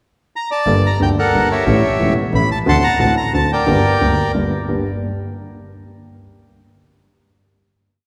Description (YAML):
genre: tango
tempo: 179 BPM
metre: 3/4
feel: rubato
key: G harmonic minor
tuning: A4 = 440 Hz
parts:
  - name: bandoneon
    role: melody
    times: 0.4-4.3 s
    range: G4 to C6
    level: -20 LUFS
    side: equal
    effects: none
  - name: warm upright piano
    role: accompaniment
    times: 0.7-4.8 s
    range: E1 to A4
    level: -22 LUFS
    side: equal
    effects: none
  - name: clear double bass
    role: bass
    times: 0.7-4.8 s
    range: E1 to D2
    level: -22 LUFS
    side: equal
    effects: none
room: wet church reverb, RT60 3.1 s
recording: recorded in a church or concert hall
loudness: -16 LUFS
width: mono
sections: 0.0-0.7 pickup bar; 0.7-4.7 A section; 4.7-5.7 final chord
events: none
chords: 0.0 N.C.; 0.7 Gmadd9; 1.7 A7; 2.7 D7; 3.7 Gm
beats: 0.33 | 0.66 1.00 1.33 | 1.67 2.00 2.33 | 2.67 3.00 3.33 | 3.67 4.00 4.34 | 4.68